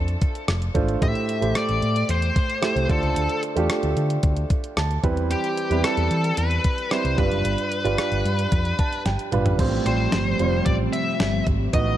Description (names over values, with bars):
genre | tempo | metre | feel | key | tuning
1980s-style pop | 112 BPM | 4/4 | straight | unclear | A4 = 440 Hz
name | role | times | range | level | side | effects
warm grand piano | accompaniment | 0.0-12.0 s | G2 to A5 | -25 LUFS | right 4 dB | none
picked electric bass | bass | 0.0-11.9 s | F1 to E3 | -24 LUFS | equal | none
clean 12-bit digital drum machine | drums | 0.1-11.9 s | crash cymbal, hi-hat, kick drum, rim click, snare drum, toms | -25 LUFS | equal | none
high-gain lead guitar | melody | 1.0-12.0 s | G4 to E5 | -27 LUFS | left 3 dB | distortion, tape echo
string machine, cellos | sustained chords | 9.9-12.0 s | D#3 to G4 | -28 LUFS | left 1 dB | phaser, ensemble chorus
room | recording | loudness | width
light reverb | dark, warm production | -20 LUFS | side -12 dB against mid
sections
0.0-9.6 A section; 9.6-12.0 B section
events
grand piano fill 4.5-5.3, 8.5-9.6; drum fill 9.1-9.6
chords
0.0 F6; 1.0 Am7; 2.9 Dm7; 5.0 Cmaj7/E; 7.2 G7; 9.6 Fsus2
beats
0.48 | 1.02 1.56 2.09 2.63 | 3.16 3.70 4.24 4.77 | 5.31 5.84 6.38 6.91 | 7.45 7.99 8.52 9.06 | 9.59 10.13 10.66 11.20 | 11.73